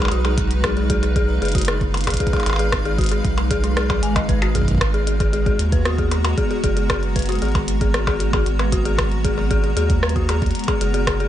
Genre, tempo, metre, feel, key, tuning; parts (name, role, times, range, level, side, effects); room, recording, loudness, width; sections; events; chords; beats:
IDM; 115 BPM; 4/4; straight; G# dorian; A4 = 440 Hz
granular cloud pad; sustained chords; 0.0-11.3 s; G#3 to A#5; -25 LUFS; equal; built-in reverb
dark detuned synth bell; arpeggios; 0.0-11.3 s; D#4 to G#5; -25 LUFS; left 4 dB; chorus, tape echo
round analog bass; bass; 0.0-11.3 s; F#1 to D#2; -21 LUFS; equal
glitchy drum kit; drums; 0.0-11.3 s; hi-hat, percussion blips, rim click; -25 LUFS; equal; digital delay
electronic kick drum; drums; 0.4-11.2 s; -23 LUFS; equal
little or no reverb; nothing above 10.4 kHz; -17 LUFS; side -12 dB against mid
0.0-11.3 A section
0.0 B6; 4.3 G#m9
| 0.12 0.64 1.16 1.68 | 2.20 2.72 3.25 3.77 | 4.29 4.81 5.33 5.85 | 6.38 6.90 7.42 7.94 | 8.46 8.98 9.51 10.03 | 10.55 11.07